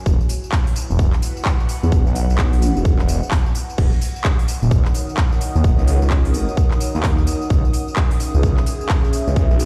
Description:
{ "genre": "bass house", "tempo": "129 BPM", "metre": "4/4", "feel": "swing 61% on 16ths", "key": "Eb phrygian", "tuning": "A4 = 440 Hz", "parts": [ { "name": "airy breathy pad", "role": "texture", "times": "0.0-9.7 s", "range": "Eb3 to Eb6", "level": "-34 LUFS", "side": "equal", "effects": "chorus, sidechain pumping" }, { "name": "phased detuned saw bass", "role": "bass", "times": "0.1-9.7 s", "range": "Eb1 to E2", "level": "-20 LUFS", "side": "equal", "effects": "phaser, tube saturation, sidechain pumping" }, { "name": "big-room dance drum kit", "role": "drums", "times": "0.1-9.7 s", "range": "crash cymbal, handclaps, hi-hat, tambourine", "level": "-30 LUFS", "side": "equal", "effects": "none" }, { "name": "electronic kick drum", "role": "drums", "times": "0.1-9.5 s", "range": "none", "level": "-19 LUFS", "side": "equal", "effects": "none" }, { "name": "deep dark ambient pad", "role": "sustained chords", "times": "4.9-9.7 s", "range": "Db4 to Gb5", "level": "-31 LUFS", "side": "equal", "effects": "chorus, built-in reverb, sidechain pumping" } ], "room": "digital ambience", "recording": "played on a big sound system in a bare room, stone room reverb", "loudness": "-18 LUFS", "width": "mono", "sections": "0.0-9.7 A section", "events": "none", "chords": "0.1 E; 3.8 Ebm7; 7.5 Dbm", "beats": "| 0.06 0.53 0.99 1.46 | 1.92 2.39 2.85 3.32 | 3.78 4.25 4.71 5.18 | 5.64 6.11 6.57 7.04 | 7.50 7.97 8.43 8.90 | 9.36" }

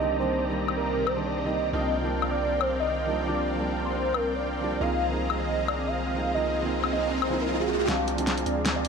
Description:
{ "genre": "future bass", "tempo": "156 BPM", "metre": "4/4", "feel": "swing 55% on 16ths, half-time", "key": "unclear", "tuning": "A4 = 441 Hz", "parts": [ { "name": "warm velvety synth lead", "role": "melody", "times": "0.0-8.9 s", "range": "Ab4 to F5", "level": "-29 LUFS", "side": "right 1 dB", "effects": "chorus, tremolo, cassette tape, ping-pong delay" }, { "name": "felt-muted upright piano", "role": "accompaniment", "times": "0.0-8.9 s", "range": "Eb3 to F4", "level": "-32 LUFS", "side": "right 3 dB", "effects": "tape echo" }, { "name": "shimmering ambient pad", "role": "sustained chords", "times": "0.0-8.9 s", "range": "C3 to F4", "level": "-37 LUFS", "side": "equal", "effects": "chorus, built-in reverb, phaser" }, { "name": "dense compressed supersaw", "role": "riff", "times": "0.0-8.9 s", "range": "C4 to Bb5", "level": "-31 LUFS", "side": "equal", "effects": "low-pass filter, tape echo" }, { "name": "long sustained 808-style bass", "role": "bass", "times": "0.0-8.9 s", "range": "C2 to D2", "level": "-34 LUFS", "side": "left 1 dB", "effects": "none" }, { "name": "pop drum kit", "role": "drums", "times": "0.7-8.9 s", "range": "hi-hat, snare drum, woodblock", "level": "-29 LUFS", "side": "left 5 dB", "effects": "low-pass filter on hats, studio reverb, low-pass filter on perc, low-pass filter on snare" }, { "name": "riser", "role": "sound effects", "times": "6.1-8.9 s", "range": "none", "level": "-33 LUFS", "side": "right 2 dB", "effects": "none" } ], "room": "light reverb", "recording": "none", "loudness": "-24 LUFS", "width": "side -5 dB against mid", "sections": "0.0-7.9 A section", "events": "filter sweep on ambient pad 0.0-7.9; riser 6.1-7.9, 7.9-8.9; drum fill 7.9-8.9", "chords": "0.0 Cm7; 1.7 Ebmaj7/C; 4.8 Ab69/C; 7.9 Bb7/C", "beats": "| 0.20 0.58 0.96 1.35 | 1.73 2.12 2.50 2.89 | 3.27 3.66 4.04 4.42 | 4.81 5.20 5.58 5.96 | 6.35 6.73 7.12 7.50 | 7.89 8.27 8.66" }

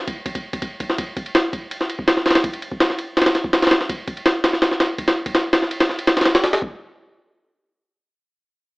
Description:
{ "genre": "drum and bass", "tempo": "165 BPM", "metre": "4/4", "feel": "straight", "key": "none", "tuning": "none", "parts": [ { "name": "jungle sampler-style drum kit", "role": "drums", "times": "0.1-6.7 s", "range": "kick drum, ride cymbal, snare drum", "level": "-17 LUFS", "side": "equal", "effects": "overdrive, studio reverb" } ], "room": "light reverb", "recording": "AM radio sound", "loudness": "-17 LUFS", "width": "side -27 dB against mid", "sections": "0.0-6.8 A section; 6.8-8.8 B section", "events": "none", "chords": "none", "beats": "0.26 0.62 | 0.98 1.35 1.71 2.08 | 2.44 2.80 3.17 3.53 | 3.89 4.26 4.62 4.99 | 5.35 5.71 6.08 6.44" }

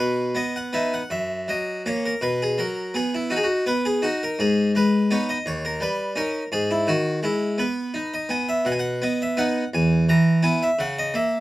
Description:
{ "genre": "classical, baroque-style suite movement for harpsichord", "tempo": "56 BPM (dotted quarters)", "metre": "6/8", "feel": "rubato", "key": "B major", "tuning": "A4 = 440 Hz", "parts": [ { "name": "harpsichord", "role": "solo", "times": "0.0-11.4 s", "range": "D#2 to A#5", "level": "-20 LUFS", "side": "equal", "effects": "none" } ], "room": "little or no reverb", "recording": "close, detailed microphones", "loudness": "-20 LUFS", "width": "side -16 dB against mid", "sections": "0.0-11.4 A section", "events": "none", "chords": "0.0 B; 1.1 F#; 2.2 B; 4.4 G#m; 5.5 D#7; 6.5 G#m; 8.6 B; 9.7 E5; 10.8 A#dim/C#", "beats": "1.11 | 2.22 3.31 | 4.39 5.46 | 6.52 7.58 | 8.64 9.72 | 10.78" }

